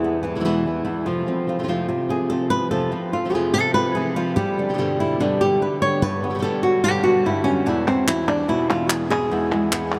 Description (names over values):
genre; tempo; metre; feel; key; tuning
flamenco; 145 BPM; 4/4; straight; unclear; A4 = 440 Hz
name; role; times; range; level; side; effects
flamenco guitar; melody; 0.0-10.0 s; E2 to C#5; -22 LUFS; equal; none
flamenco guitar; stabs; 0.0-10.0 s; E2 to G4; -28 LUFS; equal; none
palmas hand claps; percussion; 7.9-10.0 s; none; -28 LUFS; equal; none
room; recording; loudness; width
wet huge ambient reverb, RT60 8.3 s; in a vast, echoing space; -21 LUFS; mono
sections
0.0-1.1 A section; 1.1-10.0 B section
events
nylon-string guitar solo 1.1-10.0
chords
0.0 E; 1.1 F; 4.4 G; 7.7 E